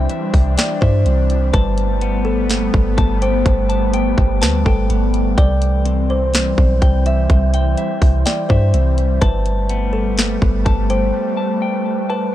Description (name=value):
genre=hip hop, atmospheric cloud-rap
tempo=125 BPM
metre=4/4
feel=half-time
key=C major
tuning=A4 = 440 Hz
part: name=airy breathy pad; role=sustained chords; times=0.0-12.3 s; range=E3 to D4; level=-22 LUFS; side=left 1 dB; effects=chorus, sidechain pumping
part: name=clean electric guitar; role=arpeggios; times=0.0-12.3 s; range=B3 to A5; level=-27 LUFS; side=left 7 dB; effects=tape echo
part: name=soft 808-style bass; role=bass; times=0.0-11.1 s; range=G1 to G2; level=-17 LUFS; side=equal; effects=none
part: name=wind-like tuned noise texture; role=texture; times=0.0-12.3 s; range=G3 to C5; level=-31 LUFS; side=right 3 dB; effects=built-in reverb
part: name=trap drum kit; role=drums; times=0.1-11.0 s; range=hi-hat, kick drum, snare drum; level=-16 LUFS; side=equal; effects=vintage 12-bit sampler grit
part: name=kalimba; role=melody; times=0.6-12.3 s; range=A4 to E5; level=-23 LUFS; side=equal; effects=tape echo
room=digital ambience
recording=none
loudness=-14 LUFS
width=side -13 dB against mid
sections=0.0-12.3 A section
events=break 11.1-12.3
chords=0.0 C; 1.5 Gadd9; 5.4 C; 9.2 Gadd9